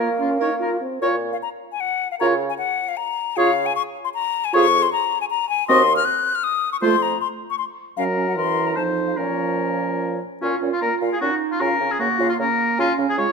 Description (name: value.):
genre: quick classical-period movement for wind quintet.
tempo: 143-159 BPM.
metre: 3/4.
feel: rubato.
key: Bb minor.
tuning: A4 = 440 Hz.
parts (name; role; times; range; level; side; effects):
concert flute; melody; 0.0-13.2 s; Bb4 to Gb6; -23 LUFS; left 9 dB; none.
warm oboe; second line; 0.0-13.3 s; Db4 to Eb5; -24 LUFS; left 2 dB; none.
clear clarinet; accompaniment; 0.0-13.3 s; Bb3 to Bb4; -26 LUFS; right 12 dB; none.
warm French horn; accompaniment; 0.0-13.3 s; Fb3 to F4; -26 LUFS; right 1 dB; none.
mellow bassoon; bass; 0.0-13.3 s; Eb2 to Bb3; -27 LUFS; right 4 dB; none.
room: moderate concert hall reverb, RT60 1.9 s.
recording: none.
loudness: -19 LUFS.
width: side -4 dB against mid.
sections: 0.0-1.0 A section; 1.0-10.4 B section; 10.4-13.3 B section.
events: none.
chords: 0.0 Bbm; 1.0 N.C.; 2.2 Bbm/Db; 3.4 Db; 4.5 Db/F; 5.7 Cdim/Eb; 6.8 F5; 8.0 Gb; 8.4 Gb7; 8.8 F7(no3); 9.2 Bbm; 11.6 Bbm/Db; 12.8 Db.